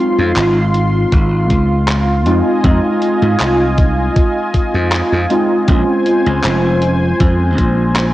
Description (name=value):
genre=vaporwave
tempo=79 BPM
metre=4/4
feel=swing 53% on 16ths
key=unclear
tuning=A4 = 440 Hz
part: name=warbly lo-fi synth keys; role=accompaniment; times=0.0-8.1 s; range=Ab3 to F4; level=-17 LUFS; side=equal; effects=ensemble chorus, cassette tape, analog delay
part: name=lush unison pad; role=sustained chords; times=0.0-8.1 s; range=F4 to C6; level=-19 LUFS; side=equal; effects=chorus, cassette tape
part: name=glassy slap bass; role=bass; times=0.2-8.1 s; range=F1 to Ab2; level=-14 LUFS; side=equal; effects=tube saturation
part: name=gated 80s digital drum machine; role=drums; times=0.4-8.1 s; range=handclaps, hi-hat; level=-21 LUFS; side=equal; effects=gated reverb, cassette tape
part: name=electronic kick drum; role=drums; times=1.1-7.7 s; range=none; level=-14 LUFS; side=equal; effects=cassette tape
room=light reverb, digital ambience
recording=home recording on cassette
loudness=-11 LUFS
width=side -15 dB against mid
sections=0.0-8.1 A section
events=none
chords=0.0 Dbmaj7; 2.3 Fm7; 5.7 Bbm9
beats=0.37 1.12 1.89 | 2.64 3.40 4.16 4.92 | 5.68 6.44 7.20 7.96